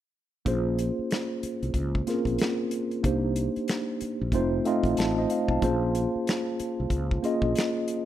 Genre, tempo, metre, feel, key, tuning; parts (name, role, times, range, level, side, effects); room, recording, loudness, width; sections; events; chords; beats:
R&B, neo-soul; 93 BPM; 4/4; swing 62% on 16ths; Bb minor; A4 = 440 Hz
tine electric piano; accompaniment; 0.5-8.1 s; A3 to A5; -26 LUFS; equal; fast stereo tremolo
mellow fretless electric bass; bass; 0.5-7.5 s; F1 to Db2; -30 LUFS; equal
warm soul drum kit; drums; 0.5-8.1 s; finger snaps, hi-hat, kick drum, snare drum; -30 LUFS; left 1 dB
studio reverb; rough home demo mix; -25 LUFS; side -12 dB against mid
0.5-8.1 A section
tine electric piano fill 4.3-5.6
0.5 Bbm7; 3.0 Cm7; 4.3 F7; 5.6 Bbm7
| 0.46 1.11 1.75 2.40 | 3.04 3.69 4.33 4.98 | 5.62 6.27 6.91 7.56